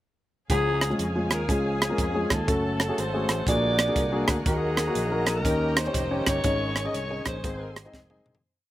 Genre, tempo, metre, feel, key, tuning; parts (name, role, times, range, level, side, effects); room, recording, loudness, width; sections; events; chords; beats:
uptempo gospel; 121 BPM; 4/4; swing 64% on 8ths; Db major; A4 = 440 Hz
growling alto saxophone; melody; 0.5-7.9 s; Ab4 to Eb5; -29 LUFS; left 1 dB; slapback echo
warm grand piano; accompaniment; 0.5-8.3 s; Ab2 to Eb5; -28 LUFS; left 1 dB
overdriven tonewheel organ; sustained chords; 0.5-8.4 s; D3 to A4; -37 LUFS; right 1 dB; slow rotary speaker, chorus vibrato
rich studio string section; sustained chords; 0.5-8.4 s; Db4 to Db6; -37 LUFS; equal
fingered electric bass; bass; 0.5-8.4 s; F1 to F2; -31 LUFS; equal
crisp fusion drum kit; drums; 0.5-8.4 s; hi-hat, kick drum, rim click, snare drum, toms; -27 LUFS; right 1 dB
little or no reverb; recorded outdoors, with no room sound; -23 LUFS; side -14 dB against mid
0.5-8.4 breakdown
fade-out 6.5-8.4; drum fill 7.9-8.4
0.5 Db; 2.5 Gbm; 3.5 Bb7b13; 4.5 Ebm; 5.5 Eb7; 6.5 Absus4; 7.4 Ab
| 0.49 0.99 1.49 1.98 | 2.48 2.98 3.47 3.97 | 4.46 4.96 5.46 5.95 | 6.45 6.95 7.44 7.94